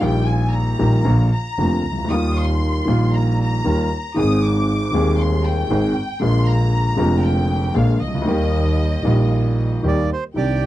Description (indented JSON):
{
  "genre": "tango",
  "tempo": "116 BPM",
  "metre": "4/4",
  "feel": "rubato",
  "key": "Eb major",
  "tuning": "A4 = 439 Hz",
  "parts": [
    { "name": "bright studio violin section", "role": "second line", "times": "0.0-10.7 s", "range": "Eb5 to Eb6", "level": "-27 LUFS", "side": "left 1 dB", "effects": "none" },
    { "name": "warm grand piano", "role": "accompaniment", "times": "0.0-10.7 s", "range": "Eb1 to Ab4", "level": "-19 LUFS", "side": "left 1 dB", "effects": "none" },
    { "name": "warm double bass", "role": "bass", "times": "0.0-10.7 s", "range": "F1 to Eb2", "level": "-20 LUFS", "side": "right 1 dB", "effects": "none" },
    { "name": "bandoneon", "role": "melody", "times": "9.9-10.7 s", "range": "G4 to D5", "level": "-23 LUFS", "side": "right 6 dB", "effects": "none" }
  ],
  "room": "little or no reverb",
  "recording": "dry, close 1970s-style studio recording, vinyl crackle",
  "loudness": "-16 LUFS",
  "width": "side -14 dB against mid",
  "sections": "0.0-10.4 A section",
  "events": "violin section solo 0.0-10.4",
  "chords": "0.0 Eb/Bb; 1.1 Bb; 2.1 Ebadd9; 4.2 Ab; 6.2 Bb7; 8.3 Eb"
}